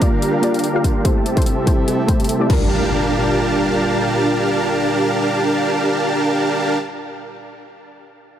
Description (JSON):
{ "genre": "future bass", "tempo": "145 BPM", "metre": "4/4", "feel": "swing 54% on 16ths, half-time", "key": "G dorian", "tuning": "A4 = 440 Hz", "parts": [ { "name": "soft round pluck", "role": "accompaniment", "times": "0.0-6.8 s", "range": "G3 to A5", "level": "-23 LUFS", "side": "left 1 dB", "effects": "chorus, sidechain pumping, dub echo" }, { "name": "airy breathy pad", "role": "sustained chords", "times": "0.0-6.8 s", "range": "Bb2 to F4", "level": "-25 LUFS", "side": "equal", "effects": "chorus, sidechain pumping" }, { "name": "dense compressed supersaw", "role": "riff", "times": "0.0-6.8 s", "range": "C4 to C6", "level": "-18 LUFS", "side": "right 1 dB", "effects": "sidechain pumping, low-pass filter, dub echo" }, { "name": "dubstep drum kit", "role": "drums", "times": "0.0-2.6 s", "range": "crash cymbal, hi-hat", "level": "-30 LUFS", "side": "left 4 dB", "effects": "none" }, { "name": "electronic kick drum", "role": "drums", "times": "0.0-2.6 s", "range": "none", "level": "-17 LUFS", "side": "equal", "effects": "none" }, { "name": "impact", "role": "sound effects", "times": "2.5-6.8 s", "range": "none", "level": "-25 LUFS", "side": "equal", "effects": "none" } ], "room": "light reverb", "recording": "none", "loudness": "-15 LUFS", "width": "side -10 dB against mid", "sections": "0.0-2.7 A section; 2.7-6.0 B section", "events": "filter sweep on supersaw synth 0.0-2.7", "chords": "0.0 Bb6; 1.1 Am7; 2.5 Gm9" }